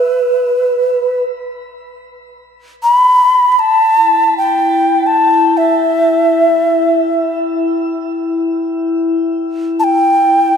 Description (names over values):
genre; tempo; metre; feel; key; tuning
world meditative, free-time meditation music; free time; none; none; E minor pentatonic; A4 = 440 Hz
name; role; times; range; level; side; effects
breathy alto ocarina; melody; 0.0-10.6 s; B4 to B5; -11 LUFS; equal; shimmer reverb, ping-pong delay
glass harmonica; texture; 3.9-10.6 s; E4; -16 LUFS; left 2 dB; stereo widening, shimmer reverb
room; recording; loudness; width
wet concert hall reverb, RT60 2.0 s; none; -10 LUFS; side -7 dB against mid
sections
0.0-10.6 A section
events
none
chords
none